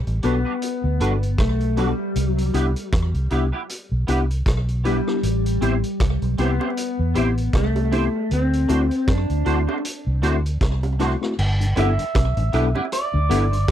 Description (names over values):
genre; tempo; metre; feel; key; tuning
lovers rock reggae; 78 BPM; 4/4; swing 57% on 16ths; G major; A4 = 440 Hz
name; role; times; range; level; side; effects
vintage muted fingered electric bass; bass; 0.0-13.7 s; G1 to F#2; -21 LUFS; equal; none
vintage drum kit; drums; 0.1-13.7 s; crash cymbal, hi-hat, kick drum, rim click; -26 LUFS; equal; slapback echo
electric guitar through a small old amp; melody; 0.2-13.7 s; G3 to E5; -25 LUFS; left 1 dB; tape echo
mellow tine electric piano; accompaniment; 0.2-13.5 s; A3 to A4; -24 LUFS; left 4 dB; medium stereo tremolo
twangy electric guitar; stabs; 0.2-13.4 s; G3 to C5; -26 LUFS; right 4 dB; ensemble chorus
bongos; percussion; 6.6-13.7 s; none; -31 LUFS; right 6 dB; slapback echo
mellow tonewheel organ; accompaniment; 11.6-13.6 s; G2 to E4; -29 LUFS; left 6 dB; chorus vibrato, slow rotary speaker
room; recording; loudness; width
little or no reverb; dry, close 1970s-style studio recording; -19 LUFS; side -10 dB against mid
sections
0.0-11.4 A section; 11.4-13.7 B section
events
none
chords
0.0 Gmaj7; 2.2 Cmaj7; 5.2 Am7; 8.3 D7; 11.4 G6